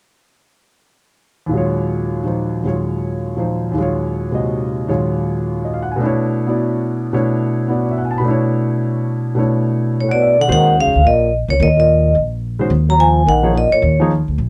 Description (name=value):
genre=modal jazz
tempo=214 BPM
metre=4/4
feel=swing 60% on 8ths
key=unclear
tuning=A4 = 438 Hz
part: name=warm concert grand piano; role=accompaniment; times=1.5-14.1 s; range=Eb2 to B5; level=-19 LUFS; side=equal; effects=none
part: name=vibraphone with medium mallets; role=melody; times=10.0-14.0 s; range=C#5 to Bb5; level=-16 LUFS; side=equal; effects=none
part: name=breathy trombone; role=second line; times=10.0-14.0 s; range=A2 to Gb3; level=-22 LUFS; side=equal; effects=none
part: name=upright bass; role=bass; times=10.5-14.5 s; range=Bb1 to F2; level=-18 LUFS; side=equal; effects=none
room=light reverb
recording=none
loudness=-17 LUFS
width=mono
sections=1.5-10.5 A section; 10.5-14.5 B section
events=none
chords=1.5 Ebm11; 6.0 Bm11; 10.5 Ebm11